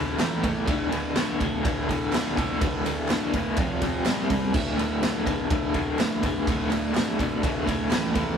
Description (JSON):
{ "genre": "garage rock duo or trio", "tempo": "124 BPM", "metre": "4/4", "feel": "straight", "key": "D minor", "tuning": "A4 = 444 Hz", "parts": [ { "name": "crunchy overdriven guitar", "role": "riff", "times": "0.0-8.4 s", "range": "D2 to C4", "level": "-25 LUFS", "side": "left 1 dB", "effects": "tremolo" }, { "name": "raw garage drum kit", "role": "drums", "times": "0.2-8.3 s", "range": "crash cymbal, kick drum, ride cymbal, snare drum", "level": "-27 LUFS", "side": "right 1 dB", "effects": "none" }, { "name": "group handclap", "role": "percussion", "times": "0.2-8.0 s", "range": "none", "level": "-37 LUFS", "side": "right 4 dB", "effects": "none" } ], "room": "moderate small room reverb, RT60 0.5 s", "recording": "rough rehearsal-room recording", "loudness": "-23 LUFS", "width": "side -7 dB against mid", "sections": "0.0-8.4 A section", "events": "none", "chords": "0.2 A5; 0.7 D5; 3.6 F5; 4.1 C5; 4.5 D5", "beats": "0.21 | 0.69 1.17 1.65 2.13 | 2.62 3.10 3.58 4.06 | 4.55 5.03 5.51 5.99 | 6.48 6.96 7.44 7.92" }